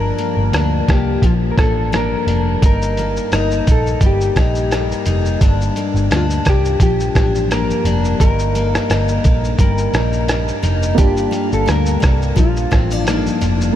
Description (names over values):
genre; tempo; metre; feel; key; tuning
indie pop, bedroom pop; 86 BPM; 4/4; swing 55% on 16ths; G minor; A4 = 440 Hz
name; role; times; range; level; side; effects
mellow electric guitar; melody; 0.0-13.4 s; F4 to Bb4; -22 LUFS; equal; analog chorus, ping-pong delay
picked steel-string acoustic guitar; accompaniment; 0.0-13.8 s; G2 to Eb4; -20 LUFS; left 4 dB; lush chorus, warbly pitch drift
vintage muted picked electric bass; bass; 0.0-13.7 s; F1 to D2; -19 LUFS; right 1 dB; none
lo-fi sampler-style drum kit; drums; 0.2-13.8 s; hi-hat, kick drum, rim click, shaker; -18 LUFS; right 1 dB; none
dark upright piano; accompaniment; 10.9-13.8 s; Bb3 to A5; -26 LUFS; right 7 dB; cassette tape
room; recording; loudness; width
light reverb, digital ambience; none; -13 LUFS; side -11 dB against mid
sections
0.0-13.8 A section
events
none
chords
0.0 Gm7; 2.6 Eb/G; 5.4 Gm7; 8.2 Eb/G; 11.0 Gm7